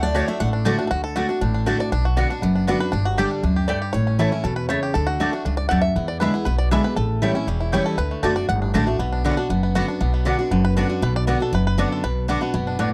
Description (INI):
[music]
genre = bluegrass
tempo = 237 BPM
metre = 4/4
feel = straight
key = unclear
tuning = A4 = 440 Hz
[part]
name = bluegrass banjo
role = melody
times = 0.0-12.9 s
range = D3 to F#5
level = -30 LUFS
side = equal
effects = none
[part]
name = picked steel-string acoustic guitar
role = melody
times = 0.0-0.5 s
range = C#5 to F#5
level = -28 LUFS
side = equal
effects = none
[part]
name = picked steel-string acoustic guitar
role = accompaniment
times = 0.0-12.9 s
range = E2 to G4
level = -25 LUFS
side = equal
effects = none
[part]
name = upright bass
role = bass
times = 0.0-12.8 s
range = E1 to E2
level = -26 LUFS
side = equal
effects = none
[part]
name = mandolin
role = stabs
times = 0.1-12.9 s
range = A3 to B5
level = -29 LUFS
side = equal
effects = none
[sound]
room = small room ambience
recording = dry, close 1970s-style studio recording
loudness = -21 LUFS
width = mono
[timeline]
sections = 0.9-9.0 A section; 9.0-12.9 A section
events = five-string banjo solo 0.9-12.9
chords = 0.0 D; 1.9 Bm; 2.9 Gsus2; 3.9 A; 5.0 D; 6.0 E7; 7.0 A7; 8.0 D; 9.0 Bm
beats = 0.15 0.40 0.66 | 0.91 1.16 1.41 1.67 | 1.92 2.17 2.42 2.68 | 2.93 3.18 3.44 3.69 | 3.94 4.19 4.45 4.70 | 4.95 5.20 5.46 5.71 | 5.96 6.21 6.46 6.72 | 6.97 7.22 7.48 7.73 | 7.98 8.23 8.49 8.74 | 8.99 9.25 9.50 9.75 | 10.01 10.26 10.52 10.77 | 11.02 11.28 11.53 11.78 | 12.04 12.29 12.54 12.79